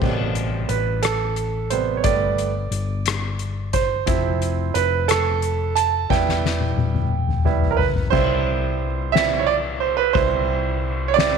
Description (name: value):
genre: six-eight pop ballad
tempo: 59 BPM (dotted quarters)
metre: 6/8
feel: straight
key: C major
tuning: A4 = 440 Hz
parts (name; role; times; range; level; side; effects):
- bright concert grand piano; accompaniment; 0.0-11.4 s; B2 to A5; -21 LUFS; right 11 dB; none
- hollow-body short-scale fingered electric bass; bass; 0.0-11.4 s; E1 to C2; -25 LUFS; left 2 dB; none
- soft-mallet drum kit; drums; 0.0-11.3 s; crash cymbal, hi-hat, kick drum, ride cymbal, rim click, snare drum, toms; -24 LUFS; left 6 dB; none
room: light reverb, small room ambience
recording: 1960s-style stereo with parts hard left and right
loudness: -18 LUFS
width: side -6 dB against mid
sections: 0.0-8.1 A section; 8.1-11.4 B section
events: grand piano solo 0.0-8.1, 8.1-11.4; drum fill 6.1-8.1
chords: 0.0 Am7; 2.0 Gadd9; 4.1 Fmaj7#11; 6.1 Em; 8.1 C